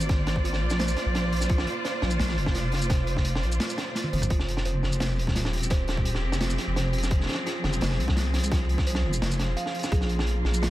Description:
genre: half-time drum and bass.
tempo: 171 BPM.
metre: 4/4.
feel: half-time.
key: F dorian.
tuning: A4 = 440 Hz.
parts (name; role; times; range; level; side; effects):
rich studio cello section; sustained chords; 0.0-10.7 s; F3 to D5; -32 LUFS; equal; sidechain pumping.
kalimba; arpeggios; 0.0-10.7 s; F4 to F5; -36 LUFS; right 4 dB; diffuse ambient delay.
deep soft wobble bass; bass; 0.0-10.7 s; Eb1 to C2; -26 LUFS; equal; chorus.
crunchy breakbeat drum kit; drums; 0.0-10.7 s; hi-hat, shaker, snare drum, toms; -31 LUFS; equal; none.
electronic kick drum; drums; 0.1-10.0 s; none; -26 LUFS; equal; overdrive.
room: light reverb, studio ambience.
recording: none.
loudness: -24 LUFS.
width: side -15 dB against mid.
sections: 0.0-10.7 A section.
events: drum fill 4.0-4.3.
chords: 0.0 Bb; 4.3 Fm; 9.9 Bb5.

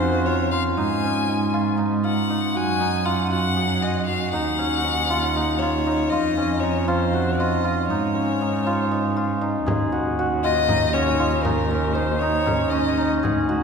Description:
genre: contemporary instrumental, chamber music in an uneven meter.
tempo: 236 BPM (eighths).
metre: 7/8.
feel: straight.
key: unclear.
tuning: A4 = 436 Hz.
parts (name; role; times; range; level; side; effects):
bright violin; melody; 0.0-13.1 s; Bb4 to Ab5; -26 LUFS; left 5 dB; none.
hammered dulcimer; arpeggios; 0.0-13.6 s; Db4 to Ab4; -23 LUFS; equal; none.
dark cello; bass; 0.0-13.6 s; D2 to Ab2; -24 LUFS; right 3 dB; none.
frame drum; percussion; 9.7-13.6 s; none; -29 LUFS; left 1 dB; none.
room: wet church reverb, RT60 3.3 s.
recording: recorded in a church or concert hall.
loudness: -19 LUFS.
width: side -6 dB against mid.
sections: 0.0-9.7 A section; 9.7-13.6 B section.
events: none.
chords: 0.0 Dbmaj7/F; 0.8 Absus4; 2.6 Ebmadd11/Gb; 4.3 Ebm7; 6.1 Dbmaj7/F; 7.9 Absus4; 9.7 Ebm7.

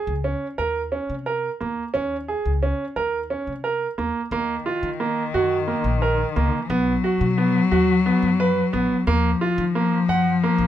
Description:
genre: contemporary instrumental, chamber music in an uneven meter.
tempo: 177 BPM (eighths).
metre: 7/8.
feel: straight.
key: Eb minor from 4.3 s.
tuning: A4 = 441 Hz.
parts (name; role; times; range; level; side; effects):
bright baby grand piano; arpeggios; 0.0-10.7 s; Bb3 to Gb5; -23 LUFS; right 4 dB; none.
upright bass; bass; 0.1-10.7 s; Bb1 to Eb3; -27 LUFS; left 1 dB; none.
warm cello; second line; 4.3-10.7 s; Eb3 to F#3; -22 LUFS; left 5 dB; none.
room: moderate small room reverb, RT60 0.5 s.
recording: close, detailed microphones.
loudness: -20 LUFS.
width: side -11 dB against mid.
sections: 0.0-4.3 A section; 4.3-10.7 B section.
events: none.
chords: 0.0 Eb5; 4.3 Ebm; 6.7 B; 9.1 Ebmadd9.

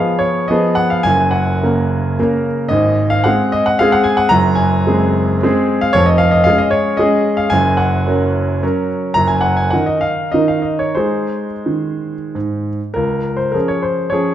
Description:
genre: classical, romantic triple-time dance for piano with dotted rhythms.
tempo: 84-121 BPM.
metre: 3/4.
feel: rubato.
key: Db major.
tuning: A4 = 439 Hz.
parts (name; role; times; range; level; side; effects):
clear grand piano; solo; 0.0-14.3 s; F1 to Bb5; -13 LUFS; equal; none.
room: moderate scoring stage reverb, RT60 1.7 s.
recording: dark, warm production.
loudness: -13 LUFS.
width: side -11 dB against mid.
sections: 0.0-13.0 A section; 13.0-14.3 B section.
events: none.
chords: 0.0 Db7; 1.0 Gb; 2.7 Ab; 4.3 Ab7/Gb; 6.0 Db/F; 7.5 Gb; 9.2 Ebm/Gb; 11.0 Ab; 13.0 Db.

